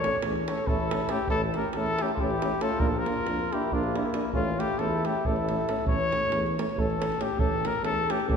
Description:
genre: balkan folk, Balkan brass band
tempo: 276 BPM (eighths)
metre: 7/8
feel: straight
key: A phrygian dominant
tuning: A4 = 439 Hz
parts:
  - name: mellow trumpet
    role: melody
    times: 0.0-8.4 s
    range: E4 to C#5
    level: -29 LUFS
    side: left 2 dB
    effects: none
  - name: mellow flugelhorn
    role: second line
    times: 0.0-5.9 s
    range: Bb3 to A4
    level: -34 LUFS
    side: right 1 dB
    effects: none
  - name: mellow euphonium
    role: accompaniment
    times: 0.0-8.4 s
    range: C#4 to D4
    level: -36 LUFS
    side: left 3 dB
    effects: none
  - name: mellow trombone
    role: accompaniment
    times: 0.0-8.4 s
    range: A3 to Bb3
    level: -34 LUFS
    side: right 3 dB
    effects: none
  - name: davul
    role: percussion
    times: 0.0-8.4 s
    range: none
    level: -32 LUFS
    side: right 2 dB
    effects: none
  - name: warm tuba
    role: bass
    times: 0.2-8.4 s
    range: A1 to F2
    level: -33 LUFS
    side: equal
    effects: none
room: wet concert hall reverb, RT60 2.0 s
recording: recorded in a church or concert hall, faint mains hum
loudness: -25 LUFS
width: side -6 dB against mid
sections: 0.0-5.9 A section; 5.9-8.4 A section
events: none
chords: 0.0 A; 2.8 Bb; 4.3 A

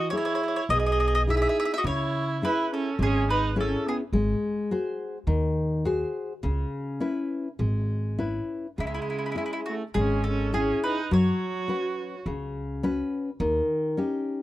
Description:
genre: italian folk, Italian serenade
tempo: 104 BPM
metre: 4/4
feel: rubato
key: C# minor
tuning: A4 = 441 Hz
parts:
  - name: mandolin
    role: melody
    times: 0.0-4.0, 8.8-12.2 s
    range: E4 to E5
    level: -29 LUFS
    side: equal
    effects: none
  - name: rich viola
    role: second line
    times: 0.0-4.0, 8.8-12.2 s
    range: G#3 to G#4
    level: -30 LUFS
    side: right 4 dB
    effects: none
  - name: nylon-string guitar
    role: accompaniment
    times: 0.0-14.4 s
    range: B2 to D#5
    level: -28 LUFS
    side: left 2 dB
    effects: none
  - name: upright bass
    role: bass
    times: 0.7-13.6 s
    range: G#1 to F#2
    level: -28 LUFS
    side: right 1 dB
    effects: none
room: small room ambience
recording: dry, close 1970s-style studio recording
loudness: -24 LUFS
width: side -15 dB against mid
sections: 0.0-8.8 A section; 8.8-14.4 B section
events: none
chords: 0.0 Emaj7; 1.9 C#m; 4.1 G#7; 6.4 C#m7; 8.8 C#m; 11.1 F#sus4; 13.4 D#7

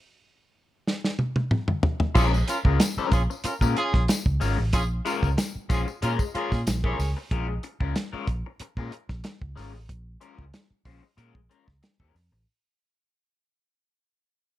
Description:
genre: funk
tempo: 93 BPM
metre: 4/4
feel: straight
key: Bb minor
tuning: A4 = 440 Hz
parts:
  - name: warm soul drum kit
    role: drums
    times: 0.9-12.3 s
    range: crash cymbal, hi-hat, kick drum, snare drum, toms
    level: -25 LUFS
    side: equal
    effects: none
  - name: clear horn section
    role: second line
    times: 2.2-7.1 s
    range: Db4 to Db5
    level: -30 LUFS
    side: right 1 dB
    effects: none
  - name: electric guitar at the edge of break-up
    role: accompaniment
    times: 2.2-12.4 s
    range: Ab3 to C5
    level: -31 LUFS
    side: left 7 dB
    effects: phaser
  - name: vintage muted fingered electric bass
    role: bass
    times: 2.2-12.4 s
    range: Ab1 to Bb2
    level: -26 LUFS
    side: equal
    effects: none
  - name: tambourine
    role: percussion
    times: 2.2-7.2 s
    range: none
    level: -38 LUFS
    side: left 5 dB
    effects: none
room: small room ambience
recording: none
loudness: -23 LUFS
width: side -14 dB against mid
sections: 0.0-2.2 A section; 2.2-12.5 B section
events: stop 0.0-2.2; drum fill 0.9-2.2; fade-out 2.2-12.5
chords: 0.0 N.C.; 2.2 Bbm7

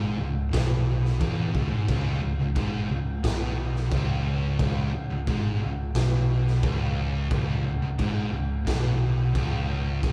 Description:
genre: stoner and doom metal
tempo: 88 BPM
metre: 4/4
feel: straight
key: C# minor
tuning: A4 = 440 Hz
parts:
  - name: thick fuzz guitar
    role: riff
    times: 0.0-10.1 s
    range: C#2 to B2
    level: -32 LUFS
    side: equal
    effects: distortion
  - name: thick fuzz guitar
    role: riff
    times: 0.0-10.1 s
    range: C#2 to B2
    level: -31 LUFS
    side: equal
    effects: distortion
  - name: overdriven picked electric bass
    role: bass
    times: 0.0-10.1 s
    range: C#1 to B1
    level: -34 LUFS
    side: equal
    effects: none
  - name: raw garage drum kit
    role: drums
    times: 0.5-10.1 s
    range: crash cymbal, kick drum, snare drum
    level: -31 LUFS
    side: equal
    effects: none
room: moderate large studio reverb, RT60 0.9 s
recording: band playing live in one room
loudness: -26 LUFS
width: mono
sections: 0.0-10.1 A section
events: none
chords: 0.0 C#5

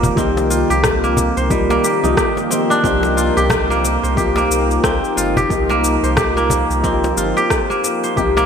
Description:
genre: organic downtempo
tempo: 90 BPM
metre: 4/4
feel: swing 59% on 16ths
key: C minor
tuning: A4 = 442 Hz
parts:
  - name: felt-muted upright piano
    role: accompaniment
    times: 0.0-8.5 s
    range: F3 to G4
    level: -20 LUFS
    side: left 2 dB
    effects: ensemble chorus, sidechain pumping, digital delay
  - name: warm analog pad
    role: sustained chords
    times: 0.0-8.5 s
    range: Eb3 to Bb4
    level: -22 LUFS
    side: right 2 dB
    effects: chorus, sidechain pumping
  - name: kora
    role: arpeggios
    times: 0.0-8.5 s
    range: G3 to C5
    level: -18 LUFS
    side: equal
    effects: digital delay
  - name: warm sub bass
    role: bass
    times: 0.0-8.5 s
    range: G1 to C2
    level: -22 LUFS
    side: equal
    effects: sidechain pumping
  - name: electronic cabasa and rim click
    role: drums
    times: 0.0-8.5 s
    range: none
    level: -23 LUFS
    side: left 1 dB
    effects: overdrive, gated reverb
  - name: cajon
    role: percussion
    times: 0.0-8.5 s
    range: none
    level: -25 LUFS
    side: left 2 dB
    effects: none
  - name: electronic kick drum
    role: drums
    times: 0.2-8.3 s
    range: none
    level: -23 LUFS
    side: equal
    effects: overdrive
room: wet plate reverb, RT60 3.4 s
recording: bright 1980s-style digital production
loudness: -14 LUFS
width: side -7 dB against mid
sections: 0.0-8.5 A section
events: none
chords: 0.0 Cm7

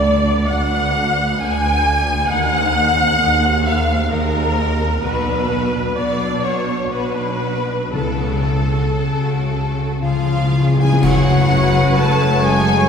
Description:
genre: classical, slow romantic movement for symphony orchestra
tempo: 54-67 BPM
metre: 3/4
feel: rubato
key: F# minor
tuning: A4 = 435 Hz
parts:
  - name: clear studio violin section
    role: melody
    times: 0.0-12.9 s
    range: B3 to A5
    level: -28 LUFS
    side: left 2 dB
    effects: none
  - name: rich studio violin section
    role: second line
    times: 0.0-12.9 s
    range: E#4 to G#5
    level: -25 LUFS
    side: left 3 dB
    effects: none
  - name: clear studio viola section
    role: accompaniment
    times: 0.0-12.9 s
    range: A4 to G#5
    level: -20 LUFS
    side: left 1 dB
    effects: none
  - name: concert harp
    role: arpeggios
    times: 0.0-12.9 s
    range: F#2 to B#4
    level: -21 LUFS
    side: left 2 dB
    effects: none
  - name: clear studio cello section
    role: bass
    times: 0.0-12.9 s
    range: D2 to A3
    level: -24 LUFS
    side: right 2 dB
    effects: none
  - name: rich studio double bass section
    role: bass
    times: 0.0-12.9 s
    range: B1 to F#2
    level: -22 LUFS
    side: right 2 dB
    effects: none
  - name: cymbal swell, clash cymbals and concert bass drum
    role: percussion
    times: 7.9-12.9 s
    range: none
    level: -26 LUFS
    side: equal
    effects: none
  - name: timpani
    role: percussion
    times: 7.9-11.0 s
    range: C#3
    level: -25 LUFS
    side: left 1 dB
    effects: none
  - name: mellow clarinet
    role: second line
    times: 10.0-12.9 s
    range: E#4 to A4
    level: -27 LUFS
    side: left 1 dB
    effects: none
  - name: silver concert flute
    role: second line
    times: 10.0-12.9 s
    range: E#5 to A5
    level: -24 LUFS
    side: left 2 dB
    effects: none
  - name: clear oboe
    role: second line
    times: 11.0-12.9 s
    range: C#5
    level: -27 LUFS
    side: right 1 dB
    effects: none
  - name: mellow bassoon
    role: accompaniment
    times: 11.0-12.9 s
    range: F#3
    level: -28 LUFS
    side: left 2 dB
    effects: none
  - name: warm trombone section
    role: sustained chords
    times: 11.0-12.9 s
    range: C#3 to A3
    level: -26 LUFS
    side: right 1 dB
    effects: none
  - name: mellow trumpet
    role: stabs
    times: 11.0-12.9 s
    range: C#5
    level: -25 LUFS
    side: equal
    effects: none
  - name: mellow French horn section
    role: sustained chords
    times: 11.1-12.9 s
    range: C#4 to F#4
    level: -28 LUFS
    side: left 1 dB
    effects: none
room: wet church reverb, RT60 3.2 s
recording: recorded in a church or concert hall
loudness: -15 LUFS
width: side -6 dB against mid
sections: 0.0-11.0 A section; 11.0-12.9 B section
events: timpani fill 10.0-11.0; band accent 11.0-12.0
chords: 0.0 Bm/D; 2.3 G#7/D#; 5.0 Bm; 7.9 F#m/C#; 10.0 C#; 11.0 F#m

